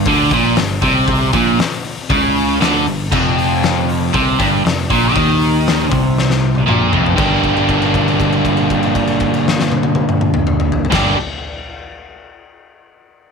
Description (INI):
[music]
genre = garage rock duo or trio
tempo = 118 BPM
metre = 4/4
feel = straight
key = G minor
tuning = A4 = 440 Hz
[part]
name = biting overdriven guitar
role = riff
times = 0.0-11.2 s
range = F2 to G4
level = -15 LUFS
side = right 1 dB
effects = none
[part]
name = picked electric bass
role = bass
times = 0.0-11.1 s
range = F1 to Eb2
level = -20 LUFS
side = right 1 dB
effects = tube saturation
[part]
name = oversized low-tuned drum kit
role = drums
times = 0.1-11.0 s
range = crash cymbal, hi-hat, kick drum, snare drum, toms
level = -19 LUFS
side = left 3 dB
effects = none
[sound]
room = studio reverb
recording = 1960s-style stereo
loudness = -12 LUFS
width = side -5 dB against mid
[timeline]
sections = 0.0-7.2 A section; 7.2-11.2 B section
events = drum fill 6.2-7.2; held note 7.2-10.9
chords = 0.0 Gm; 3.1 F5; 7.2 Gm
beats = 0.07 0.58 | 1.09 1.60 2.11 2.61 | 3.12 3.63 4.14 4.65 | 5.15 5.66 6.17 6.68 | 7.18 7.69 8.20 8.70 | 9.21 9.71 10.22 10.72